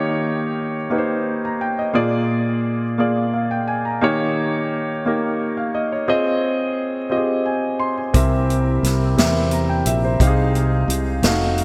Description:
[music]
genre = slow gospel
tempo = 58 BPM (dotted quarters)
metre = 6/8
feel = straight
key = unclear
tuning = A4 = 440 Hz
[part]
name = warm grand piano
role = accompaniment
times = 0.0-11.6 s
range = Bb2 to C6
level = -21 LUFS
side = equal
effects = none
[part]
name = mellow French horn section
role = sustained chords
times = 8.1-11.6 s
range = Gb3 to F5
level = -33 LUFS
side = equal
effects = none
[part]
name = fingered electric bass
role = bass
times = 8.1-11.6 s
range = F1 to E2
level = -23 LUFS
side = equal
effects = none
[part]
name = swinging big-band drum kit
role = drums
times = 8.1-11.6 s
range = hi-hat, kick drum, snare drum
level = -22 LUFS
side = equal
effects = gated reverb
[sound]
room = moderate lush hall reverb, RT60 2.9 s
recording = bright 1980s-style digital production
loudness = -20 LUFS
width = mono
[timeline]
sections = 0.0-11.6 A section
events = none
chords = 0.0 Eb7; 1.9 Bb7; 4.0 Eb7; 6.1 Fm7; 8.1 C7; 10.2 Fm7/C

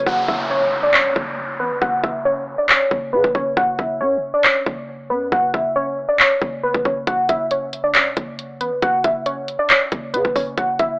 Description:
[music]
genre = hip hop, trap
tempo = 137 BPM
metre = 4/4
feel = half-time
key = unclear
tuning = A4 = 440 Hz
[part]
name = warbly dusty pluck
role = melody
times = 0.0-11.0 s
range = B4 to F#5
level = -18 LUFS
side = equal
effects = chorus, low-pass filter
[part]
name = growling 808-style bass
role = bass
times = 0.0-11.0 s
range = E1 to C#3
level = -29 LUFS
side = equal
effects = none
[part]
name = trap drum kit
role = drums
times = 0.1-10.9 s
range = handclaps, hi-hat, kick drum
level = -16 LUFS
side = equal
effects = none
[part]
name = downlifter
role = sound effects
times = 0.1-3.6 s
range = none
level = -27 LUFS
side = equal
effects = none
[sound]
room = light reverb, digital ambience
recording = AM radio sound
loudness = -16 LUFS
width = side -28 dB against mid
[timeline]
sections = 0.1-11.0 A section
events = break 0.1-7.1; filter sweep on synth pluck 0.1-11.0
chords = 0.1 F#5; 1.8 F#7sus4; 7.1 F#5; 8.8 F#7(no3)

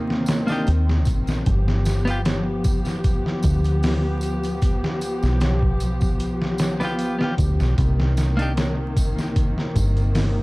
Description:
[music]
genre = trip hop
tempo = 76 BPM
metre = 4/4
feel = swing 54% on 16ths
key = C minor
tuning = A4 = 440 Hz
[part]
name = clean electric guitar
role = accompaniment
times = 0.0-8.5 s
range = Bb3 to G4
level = -27 LUFS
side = equal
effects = harmonic tremolo, tape echo
[part]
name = muted studio string section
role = sustained chords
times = 0.0-10.4 s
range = C3 to G4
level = -26 LUFS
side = left 1 dB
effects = none
[part]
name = deep dub fingered electric bass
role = bass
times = 0.0-10.4 s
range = G1 to Eb2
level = -22 LUFS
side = equal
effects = none
[part]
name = trip hop sampler-style drum kit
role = drums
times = 0.1-10.4 s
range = hi-hat, kick drum, snare drum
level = -23 LUFS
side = equal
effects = overdrive, small room ambience
[part]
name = tambourine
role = percussion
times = 0.3-10.3 s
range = none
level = -42 LUFS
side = right 1 dB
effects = none
[sound]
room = little or no reverb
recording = dark, warm production, vinyl crackle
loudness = -19 LUFS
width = side -23 dB against mid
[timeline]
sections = 0.0-10.4 A section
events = none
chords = 0.0 Cm7; 1.5 G7; 7.8 Cm7

